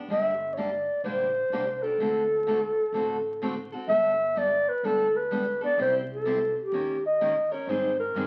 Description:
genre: acoustic string swing (jazz manouche).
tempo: 126 BPM.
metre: 4/4.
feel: swing 64% on 8ths.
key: unclear.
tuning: A4 = 435 Hz.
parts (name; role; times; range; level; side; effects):
picked steel-string acoustic guitar; accompaniment; 0.0-8.3 s; C3 to Bb4; -36 LUFS; equal; none.
breathy clarinet; melody; 0.1-8.3 s; G4 to E5; -27 LUFS; equal; none.
upright bass; bass; 0.1-8.3 s; G1 to Ab2; -48 LUFS; equal; none.
room: wet large studio reverb, RT60 0.8 s.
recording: very old 78 rpm record, vinyl crackle.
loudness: -27 LUFS.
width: mono.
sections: 0.0-7.7 A section.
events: none.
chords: 0.1 Gm; 2.0 D7; 3.9 Gadd9; 5.8 C; 6.7 Eb7; 7.7 Abmaj7.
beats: | 0.09 0.56 1.04 1.51 | 1.99 2.46 2.94 3.41 | 3.89 4.36 4.83 5.31 | 5.78 6.26 6.73 7.21 | 7.68 8.15.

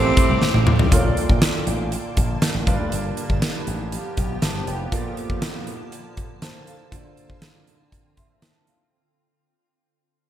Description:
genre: 1980s-style pop.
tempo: 120 BPM.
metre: 4/4.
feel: straight.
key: unclear.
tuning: A4 = 440 Hz.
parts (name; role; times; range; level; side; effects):
clear concert grand piano; accompaniment; 0.0-9.2 s; G2 to C6; -28 LUFS; right 2 dB; lush chorus.
distorted electric guitar; accompaniment; 0.0-0.9 s; A2 to A3; -31 LUFS; right 1 dB; distortion, analog chorus.
granular cloud pad; sustained chords; 0.0-8.9 s; D3 to A5; -32 LUFS; left 1 dB; built-in reverb.
slap bass with an envelope filter; bass; 0.0-4.9 s; F1 to A2; -26 LUFS; equal; none.
huge arena drum kit; drums; 0.2-8.8 s; hi-hat, kick drum, snare drum, toms; -21 LUFS; equal; gated reverb.
room: moderate plate reverb, RT60 1.5 s, studio reverb.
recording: bright 1980s-style digital production.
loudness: -19 LUFS.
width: side -11 dB against mid.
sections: 0.9-8.9 A section.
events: drum fill 0.4-0.9; fade-out 0.9-8.9.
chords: 0.0 Am7; 0.9 Bbmaj7; 2.7 G7; 4.9 Bbmaj7; 6.9 Dm7.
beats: 0.42 | 0.92 1.42 1.92 2.42 | 2.92 3.42 3.92 4.42 | 4.92 5.42 5.92 6.42 | 6.92 7.42 7.92 8.42.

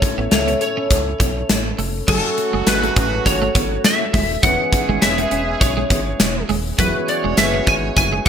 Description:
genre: 1980s-style pop.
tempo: 102 BPM.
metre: 4/4.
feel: swing 55% on 16ths.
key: unclear.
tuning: A4 = 440 Hz.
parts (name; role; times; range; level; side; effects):
lightly driven lead guitar; melody; 0.0-8.3 s; A4 to G#5; -21 LUFS; equal; ensemble chorus, digital delay.
dark baby grand piano; accompaniment; 0.0-8.3 s; A2 to G#5; -25 LUFS; left 4 dB; lush chorus.
twelve-string electric guitar; riff; 0.0-8.3 s; F#3 to D4; -27 LUFS; right 6 dB; ensemble chorus, digital delay.
gated 80s drum kit; drums; 0.0-8.3 s; crash cymbal, hi-hat, kick drum, snare drum, tambourine; -18 LUFS; equal; gated reverb.
fingered electric bass; bass; 0.2-8.3 s; D#1 to C#2; -25 LUFS; equal; none.
warm horn section; stabs; 2.1-8.3 s; C#3 to C#5; -27 LUFS; right 8 dB; none.
room: moderate plate reverb, RT60 1.5 s, small room ambience.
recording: bright 1980s-style digital production.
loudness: -15 LUFS.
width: side -8 dB against mid.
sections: 0.0-2.1 A section; 2.1-8.3 B section.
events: none.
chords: 0.0 A; 2.1 F#madd9; 4.4 C#m7/E; 6.8 Eadd9.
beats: 0.32 0.91 1.49 | 2.08 2.67 3.26 3.85 | 4.44 5.02 5.61 6.20 | 6.79 7.38 7.96.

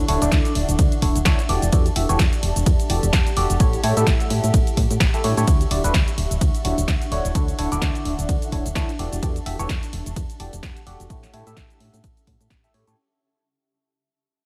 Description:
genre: piano house.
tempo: 128 BPM.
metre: 4/4.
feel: swing 57% on 16ths.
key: unclear.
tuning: A4 = 440 Hz.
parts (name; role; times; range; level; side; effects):
barking FM electric piano; riff; 0.0-13.0 s; D3 to E5; -29 LUFS; equal; phaser, sidechain pumping, dub echo.
solid FM bass; bass; 0.0-12.9 s; D1 to A2; -26 LUFS; equal; sidechain pumping.
granular cloud pad; texture; 0.0-13.0 s; C#4 to C#6; -33 LUFS; equal; built-in reverb, sidechain pumping.
punchy analog drum machine; drums; 0.1-13.0 s; hi-hat, ride cymbal, shaker, snare drum; -30 LUFS; equal; none.
electronic kick drum; drums; 0.3-12.6 s; none; -23 LUFS; equal; none.
room: digital ambience.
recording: none.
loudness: -20 LUFS.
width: mono.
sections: 0.0-13.0 A section.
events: drop 0.0-13.0; fade-out 5.5-13.0.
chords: 0.0 Aadd11/D; 1.5 Em11; 3.6 A7; 5.5 Dmaj9; 7.4 Aadd11/D; 9.0 Em11; 11.1 A7.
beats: 0.32 0.79 1.26 | 1.73 2.19 2.66 3.13 | 3.60 4.07 4.54 5.01 | 5.48 5.95 6.41 6.88 | 7.35 7.82 8.29 8.76 | 9.23 9.70 10.16 10.63 | 11.10 11.57 12.04 12.51.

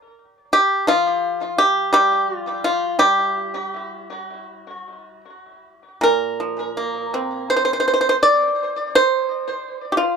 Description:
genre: chinese traditional, Chinese solo plucked strings.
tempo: 82 BPM.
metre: 4/4.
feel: uneven beats, rubato.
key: G yu mode.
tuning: A4 = 440 Hz.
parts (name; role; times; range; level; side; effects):
pipa; solo; 0.5-10.2 s; Bb2 to D5; -17 LUFS; equal; tape echo.
room: little or no reverb.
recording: dry, close 1970s-style studio recording.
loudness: -17 LUFS.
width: side -6 dB against mid.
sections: 0.0-6.0 A section; 6.0-10.2 B section.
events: none.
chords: none.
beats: | 0.17 0.89 1.60 2.31 | 3.02 3.75 4.50 5.26 | 6.03 6.78 7.50 8.21 | 8.93 9.64.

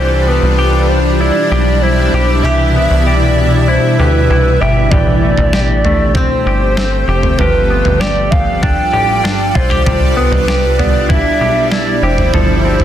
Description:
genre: dream pop.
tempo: 97 BPM.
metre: 4/4.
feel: straight.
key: C major.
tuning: A4 = 440 Hz.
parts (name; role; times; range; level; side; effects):
hollow clarinet-like synth lead; melody; 0.0-12.8 s; B4 to G5; -16 LUFS; equal; chorus, tape echo.
shimmering ambient pad; sustained chords; 0.0-12.8 s; B2 to D5; -16 LUFS; equal; chorus, built-in reverb.
semi-hollow electric guitar; arpeggios; 0.0-12.8 s; E3 to A4; -18 LUFS; left 2 dB; lush chorus, tape echo.
plucky analog bass; bass; 0.0-12.8 s; F1 to D2; -15 LUFS; equal; none.
koto; texture; 0.0-8.8 s; C4 to G4; -26 LUFS; right 1 dB; tape echo.
detuned 8-bit digital drum machine; drums; 4.9-12.8 s; kick drum, snare drum, toms; -16 LUFS; equal; overdrive.
room: moderate recital hall reverb, RT60 1.5 s.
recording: dense, heavily limited modern master.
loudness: -10 LUFS.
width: side -11 dB against mid.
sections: 0.0-12.8 A section.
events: none.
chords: 0.0 Cmaj7; 4.9 Am7; 7.4 G7; 9.9 Cmaj7; 12.3 G9sus4.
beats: 0.58 1.20 1.82 | 2.44 3.06 3.68 4.29 | 4.91 5.53 6.15 6.77 | 7.39 8.01 8.62 9.24 | 9.86 10.48 11.10 11.72 | 12.34.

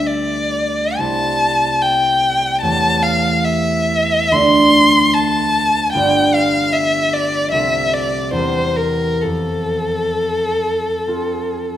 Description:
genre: classical, romantic duo for violin and harp.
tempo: 64-76 BPM.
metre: 4/4.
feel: rubato.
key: F major.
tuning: A4 = 440 Hz.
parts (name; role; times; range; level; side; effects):
warm violin; melody; 0.0-11.8 s; A4 to C6; -16 LUFS; left 1 dB; none.
concert harp; accompaniment; 0.0-11.8 s; G1 to D5; -19 LUFS; right 1 dB; none.
room: wet recital hall reverb, RT60 1.5 s.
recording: none.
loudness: -14 LUFS.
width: side -11 dB against mid.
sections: 0.0-11.8 A section.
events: none.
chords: 0.0 G7/D; 1.0 C; 2.6 A7/E; 4.3 Dm7; 5.9 G7; 7.5 F/C; 8.3 C7/E; 9.2 F.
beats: 0.06 0.97 1.80 | 2.62 3.44 4.33 5.13 | 5.93 6.73 7.53 8.34 | 9.23 10.16 11.08.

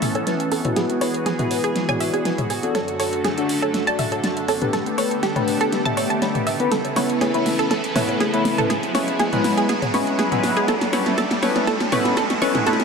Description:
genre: progressive house.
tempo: 121 BPM.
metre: 4/4.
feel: straight.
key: unclear.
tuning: A4 = 438 Hz.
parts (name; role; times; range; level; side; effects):
filtered supersaw swell; sustained chords; 0.0-12.8 s; F#2 to A4; -27 LUFS; right 2 dB; none.
analog pluck; arpeggios; 0.0-12.7 s; G4 to A5; -25 LUFS; right 3 dB; analog chorus, tape echo.
chorused polysynth; stabs; 0.0-12.8 s; G#3 to E5; -22 LUFS; left 2 dB; tape echo.
pop drum kit; drums; 0.0-12.8 s; hi-hat, snare drum; -26 LUFS; right 1 dB; overdrive.
electronic toms, bongos and congas; percussion; 0.0-12.8 s; none; -30 LUFS; left 2 dB; none.
riser; sound effects; 2.6-12.8 s; none; -31 LUFS; equal; none.
room: moderate lush hall reverb, RT60 1.9 s, digital ambience.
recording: none.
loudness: -18 LUFS.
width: side -5 dB against mid.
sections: 0.0-12.8 A section.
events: build-up 0.0-12.8; drum fill 0.0-12.8; filter sweep on analog polysynth 0.0-12.8; riser 2.6-12.8.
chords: 0.0 Aadd9; 0.8 Eadd9; 2.7 D/F#; 4.7 Gadd9; 6.7 Aadd9; 8.7 Eadd9; 10.7 D/F#.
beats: 0.27 | 0.77 1.26 1.76 2.25 | 2.75 3.24 3.74 4.24 | 4.73 5.23 5.72 6.22 | 6.72 7.21 7.71 8.20 | 8.70 9.20 9.69 10.19 | 10.68 11.18 11.67 12.17 | 12.67.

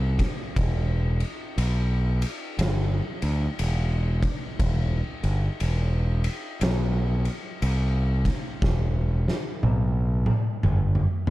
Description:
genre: stoner and doom metal.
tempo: 60 BPM.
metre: 4/4.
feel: swing 63% on 8ths.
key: E minor.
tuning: A4 = 439 Hz.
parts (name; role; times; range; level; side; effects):
growling fingered electric bass; bass; 0.0-11.3 s; E1 to D2; -23 LUFS; equal; overdrive.
oversized low-tuned drum kit; drums; 0.2-11.3 s; kick drum, ride cymbal, snare drum, toms; -28 LUFS; equal; none.
room: little or no reverb.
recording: dark, warm production.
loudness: -23 LUFS.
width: side -17 dB against mid.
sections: 0.0-11.3 A section.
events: drum fill 8.6-11.3.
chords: none.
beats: | 0.56 1.57 2.58 3.58 | 4.59 5.60 6.61 7.61 | 8.62 9.62 10.63.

